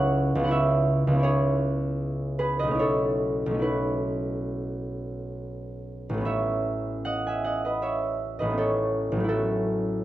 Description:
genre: classical, solo harp piece.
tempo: 62-84 BPM.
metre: 4/4.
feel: rubato.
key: A lydian.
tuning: A4 = 440 Hz.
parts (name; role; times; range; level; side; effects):
concert harp; solo; 0.0-10.0 s; A1 to G#5; -24 LUFS; equal; none.
room: light reverb.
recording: dark, warm production.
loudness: -24 LUFS.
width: side -14 dB against mid.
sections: 0.0-10.0 A section.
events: none.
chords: 0.0 C#m7; 2.8 B9sus4; 6.2 Aadd9; 9.3 F#m7/A.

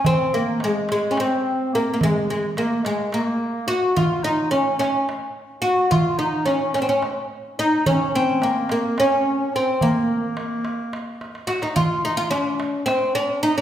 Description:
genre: Turkish makam ensemble.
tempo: 215 BPM (eighths).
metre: 7/8.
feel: straight.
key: Bb makam nihavent.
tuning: A4 = 438 Hz.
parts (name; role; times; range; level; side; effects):
oud; melody; 0.0-13.6 s; Ab3 to Gb4; -20 LUFS; equal; none.
warm clarinet; second line; 0.0-11.5 s; Ab3 to Gb4; -27 LUFS; left 2 dB; none.
darbuka; percussion; 0.0-13.5 s; none; -26 LUFS; right 1 dB; none.
room: wet recital hall reverb, RT60 1.6 s.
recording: recorded in a church or concert hall.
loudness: -19 LUFS.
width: side -10 dB against mid.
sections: 0.0-11.8 A section; 11.8-13.6 B section.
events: drum fill 11.2-11.8.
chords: none.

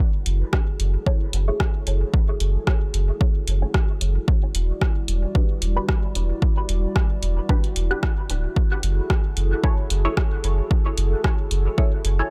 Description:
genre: dub techno.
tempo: 112 BPM.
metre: 4/4.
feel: swing 54% on 16ths.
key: unclear.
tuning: A4 = 440 Hz.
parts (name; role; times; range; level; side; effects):
dark analog pad; sustained chords; 0.0-12.3 s; G3 to D5; -35 LUFS; equal; chorus, sidechain pumping.
warm sub bass; bass; 0.3-12.2 s; D1 to F#1; -23 LUFS; equal; sidechain pumping.
deep house drum kit; drums; 0.3-12.2 s; hi-hat, rim click; -31 LUFS; equal; none.
electronic kick drum; drums; 0.5-11.9 s; none; -23 LUFS; equal; overdrive.
filtered dub chord stab; stabs; 1.1-12.3 s; D4 to C#5; -33 LUFS; equal; phaser, sidechain pumping, dub echo.
room: digital ambience.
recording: none.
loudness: -22 LUFS.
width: mono.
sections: 0.0-12.3 A section.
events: none.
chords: 0.0 F#m9; 4.3 Em9; 8.6 F#m9.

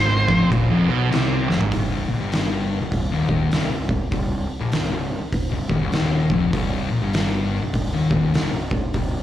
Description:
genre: stoner and doom metal.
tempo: 100 BPM.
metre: 4/4.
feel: swing 62% on 8ths.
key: C minor.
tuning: A4 = 439 Hz.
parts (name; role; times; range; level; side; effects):
octave-fuzz lead guitar; melody; 0.0-0.5 s; C5; -24 LUFS; equal; distortion, slapback echo, ping-pong delay.
thick fuzz guitar; riff; 0.0-9.2 s; C2 to C3; -23 LUFS; left 4 dB; distortion, slapback echo.
thick fuzz guitar; riff; 0.0-1.7 s; F2 to C3; -21 LUFS; right 4 dB; distortion, slapback echo.
fuzz picked electric bass; bass; 0.0-9.2 s; C1 to C2; -27 LUFS; right 1 dB; overdrive.
oversized low-tuned drum kit; drums; 0.3-9.1 s; crash cymbal, hi-hat, kick drum, snare drum, toms; -23 LUFS; right 1 dB; none.
room: little or no reverb.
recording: live gig heard through the venue's PA, club reverb.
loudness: -19 LUFS.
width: side -12 dB against mid.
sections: 0.0-1.7 A section; 1.7-9.2 B section.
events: lead electric guitar solo 0.0-1.7; drum fill 1.4-1.7.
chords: 0.0 F5; 1.7 Cm.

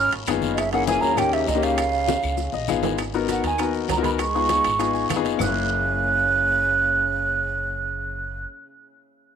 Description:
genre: Afro-Cuban jazz.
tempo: 198 BPM.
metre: 4/4.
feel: straight.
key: F# mixolydian.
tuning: A4 = 439 Hz.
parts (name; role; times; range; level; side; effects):
breathy mellow concert flute; melody; 0.0-8.5 s; D#5 to F#6; -23 LUFS; right 3 dB; none.
clear trombone; second line; 0.0-8.4 s; A#2 to C#4; -32 LUFS; right 10 dB; tape echo.
upright bass; bass; 0.0-8.4 s; F#1 to D#2; -30 LUFS; right 1 dB; none.
bongos; percussion; 0.1-5.5 s; none; -35 LUFS; left 12 dB; none.
congas; percussion; 0.1-5.5 s; none; -33 LUFS; left 8 dB; none.
maracas; percussion; 0.1-5.5 s; none; -40 LUFS; right 15 dB; none.
timbales; percussion; 0.1-5.5 s; none; -32 LUFS; right 13 dB; none.
warm grand piano; accompaniment; 0.3-8.4 s; A#3 to G#5; -26 LUFS; left 10 dB; none.
claves; percussion; 0.3-5.5 s; none; -36 LUFS; left 10 dB; none.
guiro; percussion; 0.3-5.5 s; none; -37 LUFS; left 14 dB; none.
room: moderate plate reverb, RT60 3.6 s.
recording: 1960s-style stereo with parts hard left and right.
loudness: -20 LUFS.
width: side -8 dB against mid.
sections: 0.0-3.0 A section; 3.0-5.4 B section; 5.4-7.8 C section.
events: drum fill 2.1-3.0; grand piano fill 2.4-3.0, 4.8-5.4.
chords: 0.0 C#9; 0.6 F#9; 1.2 D#7; 1.8 C#9; 3.0 G#m9; 4.2 C#9; 5.4 F#9.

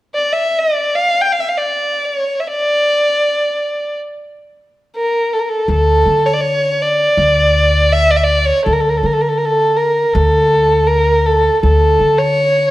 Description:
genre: arabic.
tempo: 81 BPM.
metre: 4/4.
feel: straight.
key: D maqam nahawand.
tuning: A4 = 439 Hz.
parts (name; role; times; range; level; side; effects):
dark violin; melody; 0.1-12.7 s; A4 to G5; -13 LUFS; equal; none.
upright bass; bass; 5.7-12.7 s; D2 to D3; -16 LUFS; equal; none.
room: moderate recital hall reverb, RT60 1.4 s.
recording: none.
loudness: -12 LUFS.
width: side -16 dB against mid.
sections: 0.0-5.7 A section; 5.7-12.7 B section.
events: none.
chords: none.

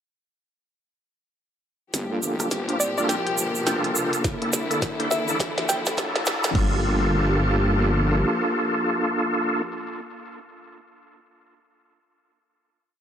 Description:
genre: glitch hop.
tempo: 104 BPM.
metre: 4/4.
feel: swing 61% on 16ths.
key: G dorian.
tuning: A4 = 440 Hz.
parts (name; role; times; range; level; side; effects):
clear studio string section; sustained chords; 1.9-9.6 s; D3 to A4; -29 LUFS; equal; sidechain pumping.
wobble bass; bass; 1.9-8.2 s; G1 to E2; -27 LUFS; equal; chorus, overdrive, high-pass filter.
glitchy drum kit; drums; 1.9-6.5 s; hi-hat, rim click, snare drum; -28 LUFS; equal; none.
tube shaker; percussion; 1.9-6.5 s; none; -29 LUFS; right 4 dB; none.
riser; sound effects; 3.0-6.6 s; none; -36 LUFS; equal; none.
bright tonewheel organ; stabs; 2.1-9.6 s; Bb3 to C5; -25 LUFS; equal; chorus vibrato, fast rotary speaker, sidechain pumping, low-pass filter, tape echo.
woody wave-folded pluck; melody; 2.8-6.3 s; D5 to G5; -29 LUFS; equal; chorus, vintage 12-bit sampler grit, tape echo.
pop drum kit; drums; 4.2-6.7 s; crash cymbal, kick drum, snare drum; -27 LUFS; equal; none.
room: light reverb, digital ambience.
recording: dry, gritty hardware recording, transformer saturation, high-pass filter.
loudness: -21 LUFS.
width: side -9 dB against mid.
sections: 1.9-6.6 build; 6.6-8.9 final chord.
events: build-up 1.9-6.6; drum fill 1.9-6.6; filter sweep on tonewheel organ 1.9-6.6; riser 3.0-6.6.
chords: 1.9 Gm7; 4.2 C13; 6.6 Gm7.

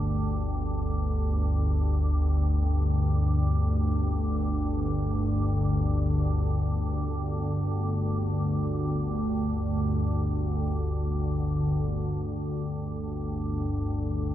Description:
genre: ambient.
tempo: free time.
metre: none.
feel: none.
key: unclear.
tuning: A4 = 440 Hz.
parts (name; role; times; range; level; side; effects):
organ-like drone; solo; 0.0-14.3 s; G1 to D2; -25 LUFS; equal; ensemble chorus, built-in reverb, tape echo.
room: moderate huge ambient reverb, RT60 7.4 s.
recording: dark, warm production.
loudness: -25 LUFS.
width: side -12 dB against mid.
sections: 0.0-11.8 A section; 11.8-14.3 A section.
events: none.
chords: 0.0 G5.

